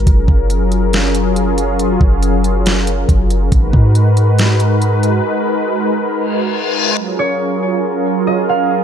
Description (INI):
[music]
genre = hip hop, atmospheric cloud-rap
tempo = 139 BPM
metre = 4/4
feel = half-time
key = F# major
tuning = A4 = 444 Hz
[part]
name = warm analog pad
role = sustained chords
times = 0.0-8.8 s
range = F#3 to B4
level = -16 LUFS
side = equal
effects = chorus, sidechain pumping
[part]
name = clean 808-style bass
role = bass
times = 0.0-5.2 s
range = F#1 to G#2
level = -14 LUFS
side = equal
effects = none
[part]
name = smooth R&B drum kit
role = drums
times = 0.0-5.1 s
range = hi-hat, kick drum, snare drum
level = -15 LUFS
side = equal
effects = none
[part]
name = reverse cymbal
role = sound effects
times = 6.3-7.0 s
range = none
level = -19 LUFS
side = left 6 dB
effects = none
[part]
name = concert harp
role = melody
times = 7.2-8.8 s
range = C#5 to E#5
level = -18 LUFS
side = right 4 dB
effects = tape echo
[sound]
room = little or no reverb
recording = none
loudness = -12 LUFS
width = side -8 dB against mid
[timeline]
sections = 0.0-7.0 A section; 7.0-8.8 B section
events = break 5.2-7.0; reverse cymbal 6.3-7.0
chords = 0.1 F#maj7; 3.5 G#m7; 7.0 F#maj7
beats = | 0.07 0.50 0.93 1.36 | 1.79 2.23 2.66 3.09 | 3.52 3.95 4.38 4.82 | 5.25 5.68 6.11 6.54 | 6.97 7.41 7.84 8.27 | 8.70